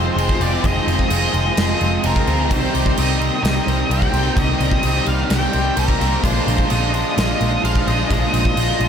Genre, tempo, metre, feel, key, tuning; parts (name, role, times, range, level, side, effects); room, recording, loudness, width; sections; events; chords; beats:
rock, shoegaze and dream pop; 129 BPM; 4/4; straight; C minor; A4 = 441 Hz
octave-fuzz lead guitar; melody; 0.0-8.9 s; Bb4 to G5; -24 LUFS; equal; distortion, digital delay
twangy electric guitar; arpeggios; 0.0-8.9 s; Eb3 to Ab4; -29 LUFS; right 2 dB; lush chorus, digital delay
biting overdriven guitar; riff; 0.0-8.9 s; F2 to Ab4; -24 LUFS; right 13 dB; reverse reverb
overdriven electric guitar; riff; 0.0-8.9 s; Bb2 to G4; -23 LUFS; left 13 dB; wide subtle chorus
vintage muted picked electric bass; bass; 0.0-8.9 s; F1 to D2; -21 LUFS; equal
gated 80s drum kit; drums; 0.2-8.9 s; crash cymbal, kick drum, snare drum; -21 LUFS; equal
small room ambience; -15 LUFS; side -8 dB against mid
0.0-8.9 A section
0.0 Fm7; 2.5 Cm7; 6.2 Bb7sus4
0.16 | 0.63 1.09 1.56 2.03 | 2.49 2.96 3.43 3.89 | 4.36 4.83 5.29 5.76 | 6.22 6.69 7.16 7.63 | 8.09 8.56